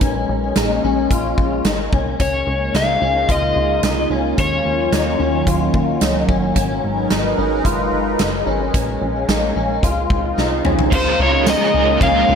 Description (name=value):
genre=dream pop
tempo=110 BPM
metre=4/4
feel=straight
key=Db major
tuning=A4 = 436 Hz
part: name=phased analog pad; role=sustained chords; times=0.0-12.4 s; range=Db3 to Cb5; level=-21 LUFS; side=right 1 dB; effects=phaser, chorus
part: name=electric guitar at the edge of break-up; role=arpeggios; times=0.0-12.4 s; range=Db4 to F4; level=-23 LUFS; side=left 4 dB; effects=ensemble chorus, ping-pong delay
part: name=plucky analog bass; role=bass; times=0.0-12.4 s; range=Gb1 to Eb2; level=-23 LUFS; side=equal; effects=none
part: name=huge arena drum kit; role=drums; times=0.0-12.1 s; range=crash cymbal, hi-hat, kick drum, ride cymbal, snare drum, tambourine, toms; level=-21 LUFS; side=right 1 dB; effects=none
part: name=overdriven slide guitar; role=melody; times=2.2-5.4, 11.0-12.4 s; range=C5 to F5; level=-19 LUFS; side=left 2 dB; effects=ping-pong delay
part: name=raw garage guitar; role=accompaniment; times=10.9-12.4 s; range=Db3 to Bb4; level=-21 LUFS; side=right 3 dB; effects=overdrive, tremolo, ensemble chorus
room=moderate concert hall reverb, RT60 1.9 s, small room ambience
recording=none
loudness=-15 LUFS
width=side -7 dB against mid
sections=0.0-10.9 A section; 10.9-12.4 B section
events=drum fill 10.4-10.9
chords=0.0 Bbm7; 2.2 Db6; 4.4 Ebm9; 6.6 Abm9; 8.7 Bbm7; 9.8 Dbmaj7; 10.9 Db6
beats=| 0.01 0.56 1.10 1.65 | 2.20 2.74 3.29 3.83 | 4.38 4.92 5.47 6.01 | 6.56 7.11 7.65 8.20 | 8.74 9.29 9.83 10.38 | 10.92 11.47 12.01